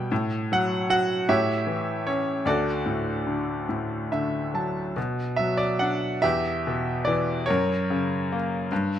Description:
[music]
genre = classical, lyrical solo piano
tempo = 47-52 BPM (dotted quarters)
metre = 6/8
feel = rubato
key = D major, B minor from 5.0 s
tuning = A4 = 440 Hz
[part]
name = bright grand piano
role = solo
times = 0.0-9.0 s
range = D2 to A5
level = -23 LUFS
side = equal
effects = none
[sound]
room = light reverb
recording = close, detailed microphones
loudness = -23 LUFS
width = side -10 dB against mid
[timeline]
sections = 0.0-5.0 A section; 5.0-9.0 B section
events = grand piano fill 3.7-5.0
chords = 0.1 F#m/A; 1.3 A7; 2.5 D; 5.0 Bm; 6.2 Em; 7.5 F#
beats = | 0.11 1.29 | 2.46 3.69 | 4.97 6.24 | 7.49 8.71

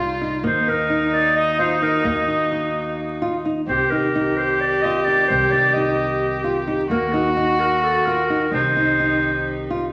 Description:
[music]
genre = contemporary instrumental, chamber music in an uneven meter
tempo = 260 BPM (eighths)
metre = 7/8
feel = straight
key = unclear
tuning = A4 = 440 Hz
[part]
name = warm viola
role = second line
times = 0.0-9.9 s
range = Eb4 to G4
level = -25 LUFS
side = equal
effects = none
[part]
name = mellow woodwind section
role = sustained chords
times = 0.0-9.9 s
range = C3 to G4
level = -32 LUFS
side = equal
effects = none
[part]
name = nylon-string guitar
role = arpeggios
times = 0.0-9.8 s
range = Bb3 to F4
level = -28 LUFS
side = equal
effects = none
[part]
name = upright bass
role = bass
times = 0.0-9.9 s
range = C2 to Eb2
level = -33 LUFS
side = equal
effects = none
[part]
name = warm clarinet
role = melody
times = 0.5-9.7 s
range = Gb4 to Eb5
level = -23 LUFS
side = equal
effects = none
[sound]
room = wet recital hall reverb, RT60 1.4 s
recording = vinyl crackle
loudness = -20 LUFS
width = mono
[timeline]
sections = 0.0-9.9 A section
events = none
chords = 0.4 Ebm; 3.7 Cm; 6.9 Ebm; 8.5 Cm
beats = 0.22 | 0.45 0.68 0.91 1.13 1.36 1.59 1.82 | 2.05 2.28 2.51 2.74 2.98 3.21 3.45 | 3.68 3.91 4.14 4.38 4.61 4.84 5.07 | 5.30 5.53 5.76 5.99 6.22 6.45 6.68 | 6.91 7.14 7.37 7.60 7.83 8.06 8.29 | 8.52 8.76 8.99 9.22 9.46 9.69

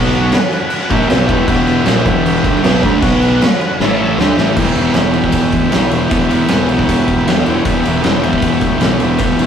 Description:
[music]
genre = garage rock duo or trio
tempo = 156 BPM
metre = 4/4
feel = straight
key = E minor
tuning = A4 = 440 Hz
[part]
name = combo organ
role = sustained chords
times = 0.0-9.5 s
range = E4 to F#5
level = -22 LUFS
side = equal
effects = none
[part]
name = thick fuzz guitar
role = riff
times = 0.0-9.5 s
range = E2 to D4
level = -13 LUFS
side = equal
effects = distortion
[part]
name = fuzz fingered electric bass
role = bass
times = 0.0-9.5 s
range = E1 to D2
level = -23 LUFS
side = equal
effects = overdrive, tube saturation
[part]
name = oversized low-tuned drum kit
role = drums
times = 0.1-9.5 s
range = crash cymbal, kick drum, ride cymbal, snare drum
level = -15 LUFS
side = equal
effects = none
[sound]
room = moderate small room reverb, RT60 0.5 s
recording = rough rehearsal-room recording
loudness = -11 LUFS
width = side -8 dB against mid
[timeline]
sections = 0.0-4.6 A section; 4.6-9.5 B section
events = drum fill 3.8-4.6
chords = 0.0 B5; 0.9 Em; 3.0 B5; 3.8 A5; 4.2 Em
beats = 0.34 0.72 1.10 | 1.49 1.87 2.25 2.64 | 3.02 3.40 3.79 4.17 | 4.56 4.94 5.33 5.71 | 6.10 6.49 6.88 7.26 | 7.65 8.04 8.43 8.82 | 9.21

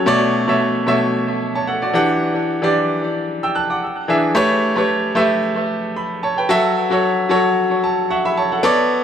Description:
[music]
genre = amapiano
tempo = 112 BPM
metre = 4/4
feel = swing 55% on 16ths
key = unclear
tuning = A4 = 442 Hz
[part]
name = bright concert grand piano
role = solo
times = 0.0-9.0 s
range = B2 to F#6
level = -15 LUFS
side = equal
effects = analog delay
[sound]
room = moderate echo chamber reverb, RT60 1.8 s, studio reverb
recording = echo-heavy mix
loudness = -15 LUFS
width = side -8 dB against mid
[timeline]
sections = 0.0-8.6 A section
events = grand piano fill 7.6-8.6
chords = 0.1 Bm9; 1.9 Em9; 3.8 E7; 4.4 A9; 6.5 F#m7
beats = | 0.07 0.60 1.14 1.68 | 2.21 2.75 3.28 3.82 | 4.35 4.89 5.42 5.96 | 6.50 7.03 7.57 8.10 | 8.64

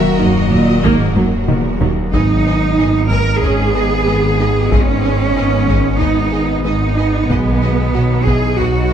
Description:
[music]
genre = cinematic, hybrid orchestral and electronic film score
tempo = 93 BPM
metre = 4/4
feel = straight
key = G# minor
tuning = A4 = 440 Hz
[part]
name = warm symphonic violin section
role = melody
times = 0.0-8.7 s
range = D#5 to G#5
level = -30 LUFS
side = left 5 dB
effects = none
[part]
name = warm symphonic violin section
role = second line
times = 0.0-8.9 s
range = F#4 to D#5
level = -29 LUFS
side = left 3 dB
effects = none
[part]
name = rich symphonic viola section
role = accompaniment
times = 0.0-8.9 s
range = D#3 to F#4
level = -23 LUFS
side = equal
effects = none
[part]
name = glassy FM pad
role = sustained chords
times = 0.0-8.9 s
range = D#3 to F#5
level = -23 LUFS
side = left 3 dB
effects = ensemble chorus, built-in reverb
[part]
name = mellow French horn section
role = sustained chords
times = 0.0-8.9 s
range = D#3 to D#4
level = -28 LUFS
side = left 6 dB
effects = none
[part]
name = warm trombone section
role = sustained chords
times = 0.0-8.9 s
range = F#2 to D#4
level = -28 LUFS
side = right 4 dB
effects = none
[part]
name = thumb-piano-like synth pluck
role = arpeggios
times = 0.0-8.5 s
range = D#3 to G#4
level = -26 LUFS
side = right 1 dB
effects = none
[part]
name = snarling distorted saw bass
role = bass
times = 0.0-8.9 s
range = D#1 to B1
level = -21 LUFS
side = left 1 dB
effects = distortion
[part]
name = rich studio cello section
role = bass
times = 0.2-8.9 s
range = D#2 to A#4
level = -17 LUFS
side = right 3 dB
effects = none
[part]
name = warm symphonic double bass section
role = bass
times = 0.2-8.9 s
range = G#1 to D#2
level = -19 LUFS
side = right 2 dB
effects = none
[part]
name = taiko ensemble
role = drums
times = 0.8-8.9 s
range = none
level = -19 LUFS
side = left 1 dB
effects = none
[sound]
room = moderate recital hall reverb, RT60 1.6 s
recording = none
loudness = -12 LUFS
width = side -9 dB against mid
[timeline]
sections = 0.0-2.1 A section; 2.1-8.9 B section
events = drum fill 1.2-2.1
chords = 0.0 D#m; 2.1 G#m; 7.3 B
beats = 0.20 0.84 1.49 | 2.14 2.78 3.43 4.07 | 4.72 5.36 6.01 6.65 | 7.30 7.94 8.59

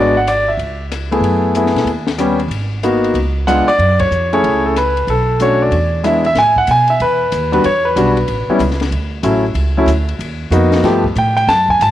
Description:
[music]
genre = jazz piano trio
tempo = 187 BPM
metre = 4/4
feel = swing 64% on 8ths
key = F# minor, A major from 6.4 s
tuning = A4 = 440 Hz
[part]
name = clear concert grand piano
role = melody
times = 0.0-11.9 s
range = F3 to A5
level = -13 LUFS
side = equal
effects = none
[part]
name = upright bass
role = bass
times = 0.0-11.9 s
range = G#1 to B2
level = -18 LUFS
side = right 1 dB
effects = none
[part]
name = compact cocktail drum kit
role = drums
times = 0.3-11.9 s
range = hi-hat, kick drum, ride cymbal, rim click, snare drum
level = -26 LUFS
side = left 4 dB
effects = none
[sound]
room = moderate spring reverb, RT60 1.9 s, studio ambience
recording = 1960s-style stereo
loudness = -12 LUFS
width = side -12 dB against mid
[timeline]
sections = 0.0-6.4 A section; 6.4-11.9 B section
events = band accent 4.0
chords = 0.0 G#m7b5; 0.6 C#m; 1.2 F#m11; 1.9 D#aug7; 2.5 G#m7; 3.2 C#7b9; 3.8 F#m9; 5.1 Bm7; 5.7 E7; 6.4 Asus2; 7.6 Em7; 8.3 A; 8.9 Dmaj7; 10.2 D#madd9; 10.8 G9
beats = 0.27 0.59 0.91 | 1.23 1.55 1.87 2.19 | 2.51 2.83 3.16 3.48 | 3.80 4.12 4.44 4.76 | 5.08 5.40 5.72 6.05 | 6.37 6.69 7.01 7.33 | 7.65 7.97 8.29 8.61 | 8.93 9.25 9.57 9.89 | 10.21 10.52 10.84 11.16 | 11.48 11.80

